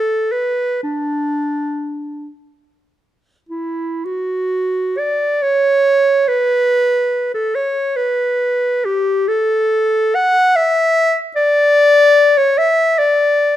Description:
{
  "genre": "classical, free, expressive piece for unaccompanied clarinet",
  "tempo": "30-50 BPM (dotted quarters)",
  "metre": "6/8",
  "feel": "rubato",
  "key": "B minor",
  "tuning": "A4 = 440 Hz",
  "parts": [
    { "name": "clear clarinet", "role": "solo", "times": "0.0-13.6 s", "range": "D4 to F#5", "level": "-13 LUFS", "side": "equal", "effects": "none" }
  ],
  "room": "light reverb",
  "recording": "close, detailed microphones",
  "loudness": "-13 LUFS",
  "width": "side -12 dB against mid",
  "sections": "0.0-4.0 A section; 4.0-13.6 B section",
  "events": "none",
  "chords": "none"
}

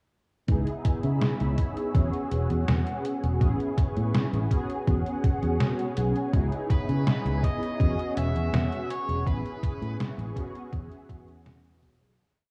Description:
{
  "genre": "vaporwave",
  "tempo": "82 BPM",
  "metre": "4/4",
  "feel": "straight",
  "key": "E major",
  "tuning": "A4 = 440 Hz",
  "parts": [
    { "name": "mellow synth brass", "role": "accompaniment", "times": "0.5-12.2 s", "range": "B3 to G#4", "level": "-34 LUFS", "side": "equal", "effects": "ensemble chorus, analog delay" },
    { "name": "lush unison pad", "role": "sustained chords", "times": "0.8-12.2 s", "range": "G#4 to E6", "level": "-43 LUFS", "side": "equal", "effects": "chorus, phaser" },
    { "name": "fingered electric bass", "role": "bass", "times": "0.5-12.2 s", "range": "E1 to C#3", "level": "-30 LUFS", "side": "equal", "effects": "tube saturation" },
    { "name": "detuned 8-bit digital drum machine", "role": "drums", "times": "0.5-12.2 s", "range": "hi-hat, snare drum", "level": "-32 LUFS", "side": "equal", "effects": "overdrive, gated reverb" },
    { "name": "electronic kick drum", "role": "drums", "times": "0.5-12.0 s", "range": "none", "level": "-28 LUFS", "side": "equal", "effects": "overdrive" },
    { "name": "smooth overdriven lead guitar", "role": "melody", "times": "6.7-10.0 s", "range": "B4 to E5", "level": "-37 LUFS", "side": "equal", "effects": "analog delay" }
  ],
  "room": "light reverb",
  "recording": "cassette tape, small room ambience",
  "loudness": "-27 LUFS",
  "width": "mono",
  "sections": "0.5-12.2 groove",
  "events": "fade-out 8.3-12.2",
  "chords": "0.5 C#m7; 1.9 E69; 3.4 Amaj9; 4.5 E69; 6.3 C#m7; 7.8 E69; 9.3 Amaj9; 10.4 E69"
}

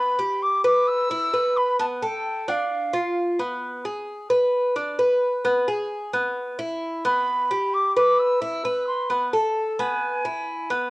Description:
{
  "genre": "latin",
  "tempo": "131 BPM",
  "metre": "4/4",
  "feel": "straight",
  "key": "unclear",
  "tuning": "A4 = 440 Hz",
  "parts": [
    { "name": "breathy concert flute", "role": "melody", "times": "0.0-3.4, 7.1-10.7 s", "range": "F5 to E6", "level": "-24 LUFS", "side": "equal", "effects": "cassette tape, plate reverb" },
    { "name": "Cuban tres", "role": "arpeggios", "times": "0.0-10.9 s", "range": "B3 to B4", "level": "-22 LUFS", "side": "equal", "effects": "cassette tape, plate reverb" }
  ],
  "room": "wet small room reverb, RT60 0.5 s",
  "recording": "home recording on cassette",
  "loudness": "-21 LUFS",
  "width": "side -20 dB against mid",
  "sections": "0.0-10.9 A section",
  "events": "none",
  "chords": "0.0 G; 0.9 E5; 1.8 Asus2; 2.7 Dm; 3.6 G#m/B; 4.5 Bm/D; 5.4 E; 7.3 G; 8.2 E5; 9.1 Asus2; 10.0 E"
}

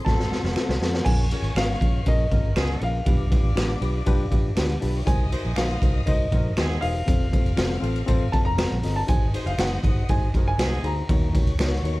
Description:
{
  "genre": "uptempo 1960s-style soul",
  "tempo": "120 BPM",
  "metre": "4/4",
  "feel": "straight",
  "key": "Bb minor",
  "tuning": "A4 = 440 Hz",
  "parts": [
    { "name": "warm baby grand piano", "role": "melody", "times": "0.0-11.3 s", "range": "Eb5 to Bb5", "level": "-31 LUFS", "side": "equal", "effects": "none" },
    { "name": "muted studio string section", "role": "second line", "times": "0.0-12.0 s", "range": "D4 to F6", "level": "-40 LUFS", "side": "left 4 dB", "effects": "tape echo" },
    { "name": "mellow horn section", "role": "second line", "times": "0.1-10.9 s", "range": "C4 to Db5", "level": "-37 LUFS", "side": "right 1 dB", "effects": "none" },
    { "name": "reed electric piano", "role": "accompaniment", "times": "0.1-12.0 s", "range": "C4 to Eb5", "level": "-30 LUFS", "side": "left 3 dB", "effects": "overdrive" },
    { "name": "vintage muted fingered electric bass", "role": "bass", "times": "0.1-12.0 s", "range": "E1 to F2", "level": "-26 LUFS", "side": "equal", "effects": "none" },
    { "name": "raw garage drum kit", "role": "drums", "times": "0.1-12.0 s", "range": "crash cymbal, hi-hat, kick drum, ride cymbal, snare drum", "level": "-23 LUFS", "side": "equal", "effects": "none" },
    { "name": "finger snap", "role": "percussion", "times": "0.6-11.7 s", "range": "none", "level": "-38 LUFS", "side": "right 2 dB", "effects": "none" }
  ],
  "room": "little or no reverb",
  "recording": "dark, warm production",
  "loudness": "-20 LUFS",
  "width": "side -20 dB against mid",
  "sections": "0.0-1.1 A section; 1.1-12.0 B section",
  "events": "drum fill 0.1-1.1",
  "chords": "0.0 F; 1.1 Bbm7; 3.1 G7; 5.1 Cm7b5; 7.1 F; 9.1 Ab7; 11.1 Ebm7"
}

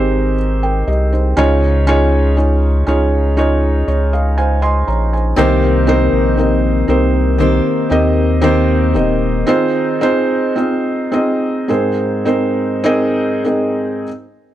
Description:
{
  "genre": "pop ballad",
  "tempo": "48-60 BPM",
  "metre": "4/4",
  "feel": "straight",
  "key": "Ab major",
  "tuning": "A4 = 440 Hz",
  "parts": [
    { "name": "felt-muted upright piano", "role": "accompaniment", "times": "0.0-14.1 s", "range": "Ab2 to C6", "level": "-14 LUFS", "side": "right 2 dB", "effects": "none" },
    { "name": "saturated sub bass", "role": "bass", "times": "0.0-9.4 s", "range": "Eb1 to Eb2", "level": "-15 LUFS", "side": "equal", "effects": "none" },
    { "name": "picked steel-string acoustic guitar", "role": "arpeggios", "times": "5.4-10.0 s", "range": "C3 to G4", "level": "-19 LUFS", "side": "left 12 dB", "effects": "none" }
  ],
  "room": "studio reverb",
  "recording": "dry, close 1970s-style studio recording",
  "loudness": "-12 LUFS",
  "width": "side -12 dB against mid",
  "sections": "0.0-14.1 A section",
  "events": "felt piano fill 3.4-5.4; slowing down 5.4-14.1",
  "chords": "0.0 Abmaj7; 1.4 Dbadd9; 5.4 Cm7; 9.5 Fm7; 11.7 Abadd9"
}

